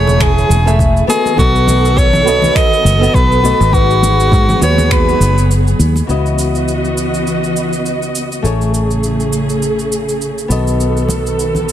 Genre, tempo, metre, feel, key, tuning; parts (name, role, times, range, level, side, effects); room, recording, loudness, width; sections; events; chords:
sunset chillout; 102 BPM; 4/4; swing 56% on 16ths; C# minor; A4 = 445 Hz
breathy soprano saxophone; melody; 0.0-5.5 s; F#4 to D#5; -15 LUFS; equal; tape echo
nylon-string guitar; accompaniment; 0.0-11.7 s; C#3 to F#5; -19 LUFS; moving between left 6 dB and right 6 dB; auto-pan, digital delay
dark studio string section; sustained chords; 0.0-11.7 s; C#3 to D#5; -18 LUFS; right 1 dB; stereo widening
fingered electric bass; bass; 0.0-11.7 s; E1 to G#2; -14 LUFS; equal
electronic shaker and finger snaps; drums; 0.1-11.7 s; -24 LUFS; right 3 dB; overdrive, soft clipping on snare
congas; percussion; 0.1-6.1, 11.1-11.7 s; -21 LUFS; left 1 dB
electronic kick drum; drums; 0.2-5.0 s; -14 LUFS; equal; overdrive
light reverb; dense, heavily limited modern master; -11 LUFS; side -11 dB against mid
0.0-6.1 A section; 6.1-11.7 B section
kick drops out 5.5-6.1
0.0 Amaj7; 1.1 B7; 3.7 G#m7; 6.1 C#m11; 8.4 Amaj7; 10.5 B7